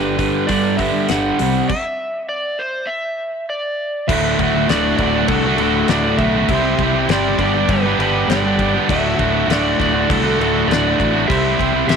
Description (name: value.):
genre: classic rock.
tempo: 100 BPM.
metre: 4/4.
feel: straight.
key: D mixolydian.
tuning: A4 = 440 Hz.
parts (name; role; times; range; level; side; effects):
overdriven slide guitar; melody; 0.0-12.0 s; A4 to F#5; -22 LUFS; equal; none.
distorted electric guitar; riff; 0.0-12.0 s; D2 to C5; -16 LUFS; right 1 dB; distortion.
growling fingered electric bass; bass; 0.0-12.0 s; D1 to G2; -23 LUFS; equal; overdrive.
damped 70s drum kit; drums; 0.2-12.0 s; crash cymbal, hi-hat, kick drum, snare drum; -23 LUFS; left 4 dB; none.
room: moderate spring reverb, RT60 2.5 s.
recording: 1960s-style stereo.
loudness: -15 LUFS.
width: side -6 dB against mid.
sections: 0.0-4.1 A section; 4.1-12.0 B section.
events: stop 1.7-4.1.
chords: 0.0 G; 1.4 C; 4.1 D; 6.5 C; 7.4 G; 8.9 D; 11.3 C.